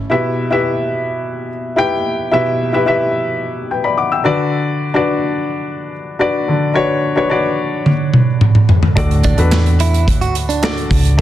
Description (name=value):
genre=piano-driven pop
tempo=108 BPM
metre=4/4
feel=straight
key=unclear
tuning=A4 = 440 Hz
part: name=dark upright piano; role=accompaniment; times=0.0-11.2 s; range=A2 to E6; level=-16 LUFS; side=left 2 dB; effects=none
part: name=modern studio drum kit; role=drums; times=7.9-11.2 s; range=hi-hat, kick drum, snare drum, toms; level=-13 LUFS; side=right 1 dB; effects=none
part: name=vintage muted fingered electric bass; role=bass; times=9.0-11.2 s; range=C#2 to E2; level=-14 LUFS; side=equal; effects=none
part: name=direct-recorded clean electric guitar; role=riff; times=9.2-10.8 s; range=D4 to F#4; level=-22 LUFS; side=right 6 dB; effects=spring reverb
part: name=group handclap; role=percussion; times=9.5-10.8 s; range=none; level=-28 LUFS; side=right 5 dB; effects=none
room=light reverb, studio ambience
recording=dense, heavily limited modern master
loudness=-13 LUFS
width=side -12 dB against mid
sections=0.1-11.2 A section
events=drum fill 7.9-9.0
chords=0.1 Em; 4.3 Bm/D; 9.0 D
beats=| 0.10 0.66 1.21 1.77 | 2.32 2.88 3.43 3.98 | 4.54 5.09 5.64 6.20 | 6.75 7.31 7.86 8.41 | 8.97 9.52 10.08 10.63 | 11.19